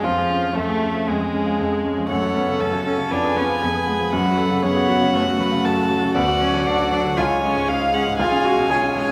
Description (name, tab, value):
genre	quick classical-period movement for piano quintet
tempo	118 BPM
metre	4/4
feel	straight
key	F# minor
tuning	A4 = 440 Hz
part	rich violin	melody	0.0-9.1 s	G#3 to A5	-27 LUFS	equal	none
part	clear cello	second line	0.0-9.1 s	E#3 to G#4	-27 LUFS	equal	none
part	warm violin	second line	0.0-9.1 s	G#3 to E#5	-28 LUFS	equal	none
part	clear concert grand piano	accompaniment	0.0-9.1 s	B1 to G#4	-25 LUFS	equal	none
part	warm viola	accompaniment	0.0-9.1 s	E#3 to A4	-29 LUFS	equal	none
room	wet recital hall reverb, RT60 1.5 s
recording	recorded in a church or concert hall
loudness	-20 LUFS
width	mono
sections	0.0-9.1 A section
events	none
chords	0.0 C#/E#; 2.1 F#m; 3.1 Fdim; 4.1 F#m; 6.2 Dmaj7; 7.2 C#; 8.2 C#7/B